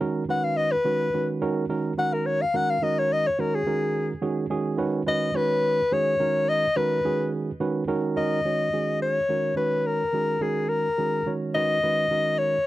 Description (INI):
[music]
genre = jazz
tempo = 71 BPM (dotted quarters)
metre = 6/8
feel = straight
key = Eb minor from 8.2 s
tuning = A4 = 439 Hz
[part]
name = tine electric piano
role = accompaniment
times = 0.0-12.6 s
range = Eb3 to Db5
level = -27 LUFS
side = right 4 dB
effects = overdrive
[part]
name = mellow soprano saxophone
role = melody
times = 0.3-12.7 s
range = Ab4 to Gb5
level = -23 LUFS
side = left 2 dB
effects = none
[sound]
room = light reverb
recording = dry, close 1970s-style studio recording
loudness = -22 LUFS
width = side -15 dB against mid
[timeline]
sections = 0.0-8.2 A section; 8.2-12.7 B section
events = soprano saxophone solo 0.0-8.2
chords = 0.0 Abm9; 1.4 Ebm7; 4.8 Abm9; 8.2 Ebm7; 11.5 Dbsus2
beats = 0.57 | 1.42 2.26 | 3.11 3.95 | 4.79 5.64 | 6.48 7.33 | 8.17 9.01 | 9.86 10.70 | 11.55 12.39